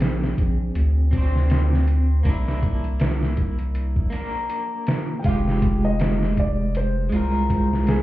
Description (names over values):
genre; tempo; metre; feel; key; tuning
trip hop; 80 BPM; 4/4; swing 57% on 16ths; F dorian; A4 = 439 Hz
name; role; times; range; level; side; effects
electric guitar at the edge of break-up; accompaniment; 0.0-8.0 s; Ab3 to C5; -26 LUFS; equal; tremolo, tape echo
round analog bass; bass; 0.0-8.0 s; F1 to D2; -21 LUFS; equal; none
trip hop sampler-style drum kit; drums; 0.0-8.0 s; hi-hat, kick drum, snare drum; -23 LUFS; equal; studio ambience
felt-muted upright piano; melody; 5.2-8.0 s; Ab4 to G5; -30 LUFS; left 1 dB; tape echo
room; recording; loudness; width
digital ambience; heard muffled through a wall, club reverb, EQ; -19 LUFS; side -16 dB against mid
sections
0.0-8.0 A section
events
none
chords
0.0 Bb7; 2.3 C7; 5.3 Fmadd9